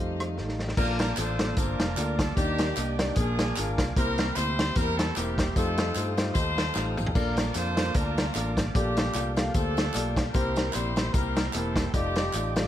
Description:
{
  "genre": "uptempo gospel",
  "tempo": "150 BPM",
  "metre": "4/4",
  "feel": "swing 55% on 8ths",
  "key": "Bb major",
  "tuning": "A4 = 437 Hz",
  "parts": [
    { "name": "dark baby grand piano", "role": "accompaniment", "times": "0.0-12.7 s", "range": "Bb2 to G5", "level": "-32 LUFS", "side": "left 1 dB", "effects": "none" },
    { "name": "tonewheel organ", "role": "sustained chords", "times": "0.0-12.7 s", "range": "G3 to Eb6", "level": "-39 LUFS", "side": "right 3 dB", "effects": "slow rotary speaker, overdrive" },
    { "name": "warm studio string section", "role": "sustained chords", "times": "0.0-0.8 s", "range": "G4 to F5", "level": "-44 LUFS", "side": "left 3 dB", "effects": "none" },
    { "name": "fingered electric bass", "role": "bass", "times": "0.0-12.7 s", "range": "E1 to G2", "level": "-31 LUFS", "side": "equal", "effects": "none" },
    { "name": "warm soul drum kit", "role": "drums", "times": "0.2-12.6 s", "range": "crash cymbal, hi-hat, kick drum, rim click, snare drum, toms", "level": "-28 LUFS", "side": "equal", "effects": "none" },
    { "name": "warm horn section", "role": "melody", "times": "0.8-12.7 s", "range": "Bb3 to C5", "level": "-32 LUFS", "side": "left 1 dB", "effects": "none" },
    { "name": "tambourine and handclaps", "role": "percussion", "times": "0.8-12.6 s", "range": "none", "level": "-39 LUFS", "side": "right 1 dB", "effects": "none" }
  ],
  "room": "light reverb",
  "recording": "none",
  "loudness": "-24 LUFS",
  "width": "side -11 dB against mid",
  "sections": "0.8-12.7 A section",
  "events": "drum fill 0.4-0.8, 6.8-7.2",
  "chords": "0.0 F9; 0.8 Bbmaj7; 2.4 Ebmaj7; 3.2 Bb7; 4.0 C7; 5.6 F9; 7.2 Bbmaj7; 8.7 Gm9/Bb; 10.3 C7; 11.9 F13"
}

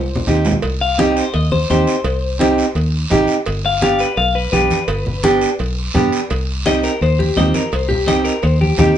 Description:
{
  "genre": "latin, cumbia",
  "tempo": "169 BPM",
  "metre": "4/4",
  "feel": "straight",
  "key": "C harmonic minor",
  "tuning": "A4 = 440 Hz",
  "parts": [
    { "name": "clean electric guitar", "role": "melody", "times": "0.0-9.0 s", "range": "G4 to F5", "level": "-20 LUFS", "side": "left 4 dB", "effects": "spring reverb" },
    { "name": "fingered electric bass", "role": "bass", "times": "0.0-8.9 s", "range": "G1 to G2", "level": "-19 LUFS", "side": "equal", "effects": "none" },
    { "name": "congas", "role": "percussion", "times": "0.2-9.0 s", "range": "none", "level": "-21 LUFS", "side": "left 1 dB", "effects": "none" },
    { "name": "nylon-string guitar", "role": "accompaniment", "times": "0.3-9.0 s", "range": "B3 to G4", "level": "-16 LUFS", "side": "right 2 dB", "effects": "none" },
    { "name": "guiro", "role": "percussion", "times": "0.3-9.0 s", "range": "none", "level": "-28 LUFS", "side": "right 4 dB", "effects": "none" },
    { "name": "timbales and cowbell", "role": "percussion", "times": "0.5-8.6 s", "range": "none", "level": "-24 LUFS", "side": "right 4 dB", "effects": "none" }
  ],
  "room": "moderate studio reverb, RT60 0.6 s",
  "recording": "band playing live in one room, nothing above 10.3 kHz",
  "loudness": "-14 LUFS",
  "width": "side -10 dB against mid",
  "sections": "0.6-9.0 A section",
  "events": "drum fill 0.0-0.6; clean electric guitar solo 0.6-9.0",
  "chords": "0.0 Cm; 3.5 G; 6.3 Cm"
}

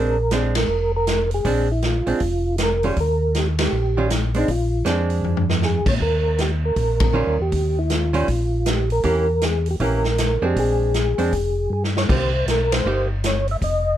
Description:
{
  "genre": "soul jazz organ trio",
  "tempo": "158 BPM",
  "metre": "4/4",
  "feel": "swing 63% on 8ths",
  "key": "Bb mixolydian",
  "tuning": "A4 = 436 Hz",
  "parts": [
    { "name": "percussive tonewheel organ", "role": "melody", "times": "0.0-14.0 s", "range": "Eb4 to E5", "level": "-22 LUFS", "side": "right 1 dB", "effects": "slow rotary speaker, chorus vibrato" },
    { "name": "archtop guitar, miked and amplified", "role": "accompaniment", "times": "0.0-13.1 s", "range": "Eb3 to G4", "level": "-23 LUFS", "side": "right 4 dB", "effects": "none" },
    { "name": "mellow tonewheel organ", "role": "bass", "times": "0.0-14.0 s", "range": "F1 to Bb2", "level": "-22 LUFS", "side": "equal", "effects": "overdrive, chorus vibrato, slow rotary speaker" },
    { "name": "swinging big-band drum kit", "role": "drums", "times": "0.3-13.7 s", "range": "crash cymbal, hi-hat, kick drum, ride cymbal, snare drum, toms", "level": "-24 LUFS", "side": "equal", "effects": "none" }
  ],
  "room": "little or no reverb",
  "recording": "dark, warm production",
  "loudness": "-18 LUFS",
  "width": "side -11 dB against mid",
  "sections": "0.0-14.0 A section",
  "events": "band accent 0.5, 3.5, 7.0, 12.7; drum fill 5.2-5.6, 11.7-12.1",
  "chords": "0.0 Bb9; 3.0 Eb; 4.5 Bb9; 6.0 Ebadd9; 9.0 Edim7; 10.6 Bb9; 12.1 Cm7"
}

